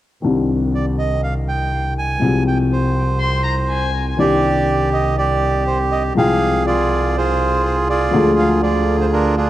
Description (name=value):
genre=tango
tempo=122 BPM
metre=4/4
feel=rubato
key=C minor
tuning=A4 = 440 Hz
part: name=dark upright piano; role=accompaniment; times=0.2-9.5 s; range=C2 to G5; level=-19 LUFS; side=left 3 dB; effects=none
part: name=warm double bass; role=bass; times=0.2-9.5 s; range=C2 to D2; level=-21 LUFS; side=equal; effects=none
part: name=bandoneon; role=melody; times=0.7-9.5 s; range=D4 to Ab5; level=-18 LUFS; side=right 3 dB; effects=cassette tape, tape echo
part: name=warm violin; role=second line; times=3.2-4.2 s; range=Ab5 to C6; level=-26 LUFS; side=left 4 dB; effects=tape echo
room=moderate spring reverb, RT60 1.5 s, small room ambience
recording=home recording on cassette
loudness=-15 LUFS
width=side -14 dB against mid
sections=0.2-4.2 A section; 4.2-9.5 B section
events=none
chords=0.2 Cmadd9; 2.2 Fmadd9/C; 4.2 Cmadd9; 6.2 Fmadd9/C; 8.1 Ddim